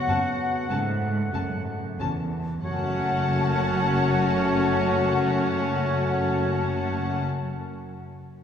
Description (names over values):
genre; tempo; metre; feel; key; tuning
classical, slow romantic movement for symphony orchestra; 32 BPM (dotted quarters); 6/8; rubato; F# minor; A4 = 440 Hz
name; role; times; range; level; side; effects
bright oboe; second line; 0.0-7.2 s; C#5 to F#5; -33 LUFS; equal; none
mellow hollow concert flute; second line; 0.0-7.2 s; F#5; -36 LUFS; left 2 dB; none
warm clarinet; second line; 0.0-7.2 s; F#4; -34 LUFS; left 3 dB; none
warm symphonic violin section; second line; 0.0-7.2 s; F#5; -35 LUFS; left 4 dB; none
clear trombone section; sustained chords; 0.0-7.2 s; C#3 to B3; -34 LUFS; right 1 dB; none
mellow French horn section; sustained chords; 0.0-7.2 s; F#3 to F#4; -35 LUFS; left 4 dB; none
brilliant trumpet; stabs; 0.0-7.2 s; C#4 to F#4; -31 LUFS; left 1 dB; none
timpani; percussion; 0.0-7.2 s; none; barely audible; none; none
warm symphonic violin section; melody; 0.1-7.2 s; A5; -33 LUFS; left 6 dB; none
warm symphonic viola section; accompaniment; 0.1-7.2 s; C#4 to F#4; -34 LUFS; left 1 dB; none
rich symphonic cello section; bass; 0.1-7.2 s; E2 to G#2; -30 LUFS; right 2 dB; none
warm symphonic double bass section; bass; 0.1-7.2 s; F#1; -30 LUFS; equal; none
room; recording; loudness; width
wet church reverb, RT60 3.3 s; recorded in a church or concert hall, small room ambience; -22 LUFS; side -8 dB against mid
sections
0.0-2.6 A section; 2.6-6.5 B section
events
slowing down 0.0-2.6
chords
0.0 F#m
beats
0.70 | 2.65 4.54